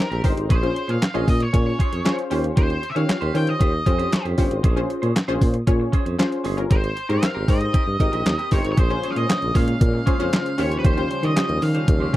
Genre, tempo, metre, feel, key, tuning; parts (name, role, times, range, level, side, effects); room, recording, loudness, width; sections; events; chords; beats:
early-eighties boogie funk; 116 BPM; 4/4; straight; Bb dorian; A4 = 441 Hz
octave-fuzz lead guitar; melody; 0.0-12.2 s; Bb4 to G5; -28 LUFS; equal; distortion, tape echo
funky polysynth comp; accompaniment; 0.0-12.2 s; Db4 to Eb5; -26 LUFS; left 2 dB; chorus
semi-hollow electric guitar; riff; 0.0-12.2 s; C4 to Db5; -33 LUFS; right 5 dB; wide subtle chorus
warm tuba; bass; 0.1-12.2 s; G1 to Eb3; -23 LUFS; equal
detuned 8-bit digital drum machine; drums; 0.1-12.2 s; handclaps, hi-hat, kick drum, snare drum; -19 LUFS; equal; overdrive
warm analog pad; sustained chords; 8.8-12.2 s; Db3 to Db4; -30 LUFS; equal; chorus
little or no reverb; dry, close 1970s-style studio recording; -18 LUFS; side -15 dB against mid
0.0-8.8 A section; 8.8-12.2 B section
0.0 Abmaj9; 0.5 Bbm9; 2.3 Eb13; 4.6 Bbm9; 6.7 Abmaj9; 8.8 Bbm9; 10.6 Eb13
| 0.50 1.02 1.53 2.05 | 2.57 3.09 3.60 4.12 | 4.64 5.16 5.67 6.19 | 6.71 7.22 7.74 8.26 | 8.78 9.29 9.81 10.33 | 10.85 11.36 11.88